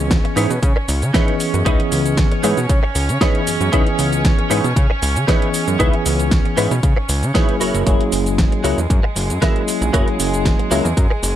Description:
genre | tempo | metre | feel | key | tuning
nu-disco, nu disco | 116 BPM | 4/4 | swing 53% on 16ths | C# dorian | A4 = 442 Hz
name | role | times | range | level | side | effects
tine electric piano | accompaniment | 0.0-10.9 s | E3 to D#5 | -22 LUFS | equal | medium stereo tremolo, sidechain pumping, digital delay
rich chamber string section | sustained chords | 0.0-11.4 s | G#3 to C#5 | -25 LUFS | right 2 dB | sidechain pumping
fat analog bass | bass | 0.0-11.4 s | F#1 to C#3 | -20 LUFS | equal | none
electronic kick drum | drums | 0.1-11.1 s | none | -17 LUFS | equal | none
pop drum kit | drums | 0.1-11.3 s | hi-hat, shaker, snare drum | -23 LUFS | equal | none
direct-recorded clean electric guitar | riff | 0.2-11.3 s | D#4 to E5 | -23 LUFS | right 2 dB | ensemble chorus, digital delay
room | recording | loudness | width
digital ambience | none | -14 LUFS | side -11 dB against mid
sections
0.0-11.4 A section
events
none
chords
0.0 C#m9; 7.6 F#7

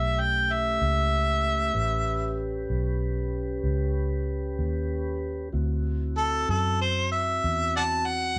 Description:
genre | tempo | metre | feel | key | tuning
slow blues | 64 BPM (dotted quarters) | 12/8 | straight | A mixolydian | A4 = 440 Hz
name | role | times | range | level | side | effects
clear harmonica | melody | 0.0-8.4 s | A4 to A5 | -27 LUFS | equal | overdrive
mellow tonewheel organ | sustained chords | 0.0-8.4 s | A3 to B4 | -36 LUFS | equal | slow rotary speaker
vintage muted fingered electric bass | bass | 0.0-8.4 s | A1 to F#2 | -30 LUFS | equal | none
room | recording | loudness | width
light reverb | band playing live in one room, nothing above 11.0 kHz | -27 LUFS | mono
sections
0.0-8.4 A section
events
harmonica solo 0.0-8.4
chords
0.0 A9; 5.5 D9

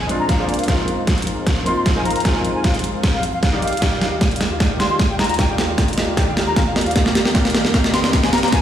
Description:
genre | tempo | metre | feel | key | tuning
future bass | 153 BPM | 4/4 | half-time | Ab lydian | A4 = 441 Hz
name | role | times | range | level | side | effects
wooden flute | melody | 0.0-8.6 s | F5 to C6 | -25 LUFS | left 2 dB | sidechain pumping, tape echo
felt-muted upright piano | accompaniment | 0.0-3.6 s | Ab3 to F4 | -26 LUFS | equal | sidechain pumping, dub echo
airy breathy pad | sustained chords | 0.0-8.6 s | Eb2 to Bb4 | -28 LUFS | left 1 dB | chorus, sidechain pumping
supersaw stab | riff | 0.0-8.6 s | Eb3 to F5 | -25 LUFS | equal | sidechain pumping, low-pass filter
dubstep drum kit | drums | 0.1-8.6 s | hi-hat, snare drum | -20 LUFS | equal | overdrive
electronic kick drum | drums | 0.3-8.6 s | none | -19 LUFS | equal | overdrive
soft round pluck | arpeggios | 3.8-8.6 s | F4 to Eb5 | -29 LUFS | right 4 dB | none
riser | sound effects | 4.8-8.6 s | none | -32 LUFS | right 2 dB | none
room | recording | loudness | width
moderate huge ambient reverb, RT60 8.4 s | played on a big sound system in a bare room, stone room reverb | -15 LUFS | side -10 dB against mid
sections
0.0-8.6 A section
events
build-up 0.0-8.6; drum fill 0.0-8.6; filter sweep on supersaw synth 0.0-8.6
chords
0.0 Bb7; 0.7 Ab6; 3.6 Ebmaj9; 7.0 Fm11

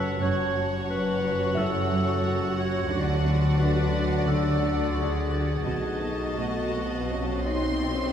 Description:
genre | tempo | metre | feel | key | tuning
cinematic | 81-89 BPM | 4/4 | straight | F# minor | A4 = 440 Hz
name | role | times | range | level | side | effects
warm symphonic violin section | melody | 0.0-8.1 s | F#5 to B#5 | -38 LUFS | left 1 dB | none
warm clarinet | second line | 0.0-8.1 s | F#4 to C#5 | -32 LUFS | equal | none
warm symphonic violin section | second line | 0.0-8.1 s | C#5 to D#5 | -36 LUFS | equal | none
dark symphonic viola section | accompaniment | 0.0-8.1 s | F#4 | -34 LUFS | right 3 dB | none
dark French horn section | sustained chords | 0.0-8.1 s | F#3 to D#4 | -31 LUFS | left 3 dB | none
warm symphonic cello section | riff | 0.0-8.0 s | F#2 to D4 | -34 LUFS | right 1 dB | none
dark studio double bass section | bass | 0.0-8.1 s | F#1 to D2 | -30 LUFS | right 1 dB | none
rich symphonic cello section | bass | 0.0-8.1 s | F#2 to D3 | -30 LUFS | equal | none
music box | texture | 0.0-8.1 s | C#4 to D6 | -38 LUFS | equal | none
warm chamber violin section | texture | 0.0-8.1 s | F#5 to A6 | -41 LUFS | left 3 dB | none
swell | sound effects | 6.6-8.1 s | none | -35 LUFS | left 1 dB | none
room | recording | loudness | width
wet scoring stage reverb, RT60 1.9 s | heard from further back in the room | -23 LUFS | side -9 dB against mid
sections
0.0-8.1 A section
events
swell 6.6-8.1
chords
0.0 F#m; 2.9 D; 5.7 B7

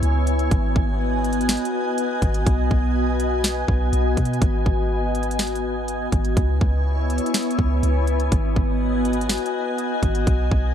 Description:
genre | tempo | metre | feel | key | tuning
hip hop, atmospheric cloud-rap | 123 BPM | 4/4 | half-time | G# minor | A4 = 440 Hz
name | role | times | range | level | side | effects
glassy FM pad | sustained chords | 0.0-10.7 s | B3 to G#5 | -23 LUFS | left 1 dB | ensemble chorus, built-in reverb, sidechain pumping
warm 808-style bass | bass | 0.0-10.7 s | G#1 to B2 | -22 LUFS | equal | none
trap drum kit | drums | 0.0-10.6 s | hi-hat, kick drum, snare drum | -22 LUFS | equal | none
room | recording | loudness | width
light reverb | none | -19 LUFS | side -9 dB against mid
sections
0.0-10.7 A section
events
none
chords
0.0 C#m7; 0.5 G#m7; 2.5 B6; 4.4 G#m7; 6.4 C#m7; 8.3 G#m7

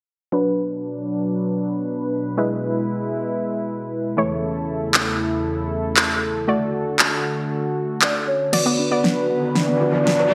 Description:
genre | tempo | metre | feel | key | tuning
dance-pop | 117 BPM | 4/4 | straight | B dorian | A4 = 438 Hz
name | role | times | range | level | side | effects
soft round pluck | accompaniment | 0.3-9.4 s | E3 to D5 | -25 LUFS | equal | chorus, low-pass filter
warm analog pad | sustained chords | 0.3-10.3 s | E2 to B4 | -26 LUFS | equal | chorus, low-pass filter
deep house drum kit | drums | 4.9-10.2 s | crash cymbal, handclaps, snare drum | -22 LUFS | equal | overdrive, gated reverb
hollow clarinet-like synth lead | melody | 8.0-10.3 s | B4 to D5 | -25 LUFS | equal | chorus, low-pass filter
unison pluck | arpeggios | 8.5-10.3 s | F#3 to F#5 | -31 LUFS | equal | none
direct-recorded clean electric guitar | riff | 8.5-10.3 s | D4 to B4 | -34 LUFS | equal | none
riser | sound effects | 9.0-10.3 s | none | -28 LUFS | equal | none
room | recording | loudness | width
moderate lush hall reverb, RT60 2.1 s | bright 1980s-style digital production | -21 LUFS | mono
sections
0.3-8.5 A section; 8.5-10.3 B section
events
filter sweep 0.3-8.5, 8.5-10.3; build-up 8.5-10.3; drum fill 8.5-10.3; riser 9.0-10.3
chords
0.3 Bm; 2.4 E; 4.2 A/E; 6.5 D; 8.5 Bm

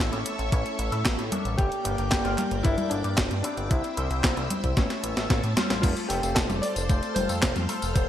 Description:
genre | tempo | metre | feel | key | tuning
italo disco | 113 BPM | 4/4 | straight | unclear | A4 = 439 Hz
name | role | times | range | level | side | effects
clear grand piano | melody | 0.0-8.1 s | D4 to D5 | -32 LUFS | left 1 dB | digital delay, shimmer reverb
string machine, full ensemble | sustained chords | 0.0-8.1 s | Bb3 to E6 | -34 LUFS | equal | ensemble chorus, shimmer reverb
electric guitar with an envelope filter | stabs | 0.0-8.1 s | G3 to C#5 | -34 LUFS | left 3 dB | wide subtle chorus, shimmer reverb
chorused synth bass | bass | 0.0-8.1 s | F1 to A2 | -30 LUFS | equal | none
clean 12-bit digital drum machine | drums | 0.1-8.1 s | congas, crash cymbal, handclaps, hi-hat, snare drum, tambourine | -28 LUFS | equal | overdrive, gated reverb
electronic kick drum | drums | 0.5-8.1 s | none | -25 LUFS | equal | overdrive
room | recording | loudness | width
moderate lush hall reverb, RT60 1.8 s | bright 1980s-style digital production | -23 LUFS | side -11 dB against mid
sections
0.0-5.8 A section; 5.8-8.1 B section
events
drum fill 4.8-5.8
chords
0.0 A; 1.6 Gm; 3.7 C; 4.8 A; 5.8 F

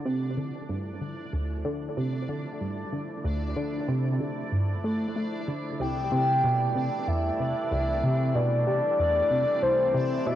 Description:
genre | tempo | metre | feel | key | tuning
ambient, sequencer-driven space music | 94 BPM | 4/4 | straight | D minor | A4 = 440 Hz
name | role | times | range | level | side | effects
sweeping resonant pad | sustained chords | 0.0-10.4 s | D3 to E4 | -37 LUFS | right 1 dB | chorus, cassette tape
tight sequenced synth | riff | 0.0-10.4 s | C2 to A3 | -28 LUFS | equal | chorus, cassette tape, tape echo
bubbling stepped-filter texture | texture | 0.0-10.4 s | D4 to D5 | -39 LUFS | left 1 dB | chorus, built-in reverb, cassette tape
soft octave-layered synth lead | melody | 5.8-10.4 s | C5 to G5 | -25 LUFS | left 1 dB | chorus, cassette tape, tape echo
room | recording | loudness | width
wet booth ambience, RT60 0.2 s | home recording on cassette | -25 LUFS | side -12 dB against mid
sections
0.0-10.4 A section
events
fade-in on analog synth pad 0.0-10.4; fade-in on synth texture 0.0-10.4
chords
0.0 Dmadd9; 5.8 C6

